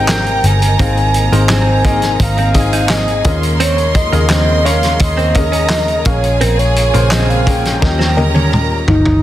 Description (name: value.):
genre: piano-driven pop.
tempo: 85 BPM.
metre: 4/4.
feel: straight.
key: unclear.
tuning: A4 = 441 Hz.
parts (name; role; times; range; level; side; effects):
mellow horn-like synth lead; melody; 0.0-9.2 s; Eb4 to Ab5; -18 LUFS; right 1 dB; chorus.
warm studio violin section; second line; 0.0-9.2 s; Ab4 to C6; -21 LUFS; right 2 dB; none.
clear upright piano; accompaniment; 0.0-9.2 s; Bb2 to F5; -21 LUFS; left 4 dB; none.
rich studio string section; sustained chords; 0.0-9.2 s; C3 to G4; -26 LUFS; equal; none.
direct-recorded clean electric guitar; riff; 0.0-8.5 s; Bb3 to Eb4; -22 LUFS; right 4 dB; wide subtle chorus.
vintage muted picked electric bass; bass; 0.0-9.2 s; G1 to Eb2; -15 LUFS; equal; none.
loose indie drum kit; drums; 0.1-9.2 s; handclaps, hi-hat, kick drum, snare drum, toms; -17 LUFS; equal; none.
room: light reverb, studio reverb.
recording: dense, heavily limited modern master.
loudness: -10 LUFS.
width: side -13 dB against mid.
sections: 0.0-9.2 A section.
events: drum fill 7.8-9.2.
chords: 0.0 Abmaj7; 3.3 Eb7sus4; 6.1 Bbm7; 7.8 Eb7.